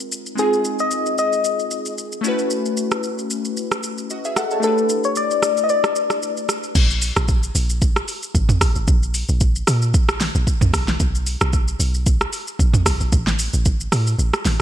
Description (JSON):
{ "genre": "amapiano", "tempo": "113 BPM", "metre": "4/4", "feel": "swing 55% on 16ths", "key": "unclear", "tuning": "A4 = 444 Hz", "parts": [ { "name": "glassy digital keys", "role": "accompaniment", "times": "0.0-6.8 s", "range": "Ab3 to A5", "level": "-23 LUFS", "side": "left 1 dB", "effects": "chorus" }, { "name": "deep house drum kit", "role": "drums", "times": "0.0-14.6 s", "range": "crash cymbal, hi-hat, kick drum, rim click, shaker, snare drum, toms", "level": "-20 LUFS", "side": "right 1 dB", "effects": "vintage 12-bit sampler grit" }, { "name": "soft struck synth lead", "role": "melody", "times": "0.4-6.5 s", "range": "Ab4 to Eb5", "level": "-20 LUFS", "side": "left 3 dB", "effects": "chorus, ping-pong delay" }, { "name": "deep log drum bass", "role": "bass", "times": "6.8-14.6 s", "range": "Ab1 to Bb2", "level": "-20 LUFS", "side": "equal", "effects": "none" } ], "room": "light reverb, digital ambience", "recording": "bright 1980s-style digital production", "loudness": "-17 LUFS", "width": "side -10 dB against mid", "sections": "0.0-6.8 A section; 6.8-14.6 B section", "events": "drop 6.8-14.6; kick muted 14.2-14.6", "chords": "0.0 Bb9sus4; 2.2 B9sus4; 4.6 A9sus4; 6.8 N.C." }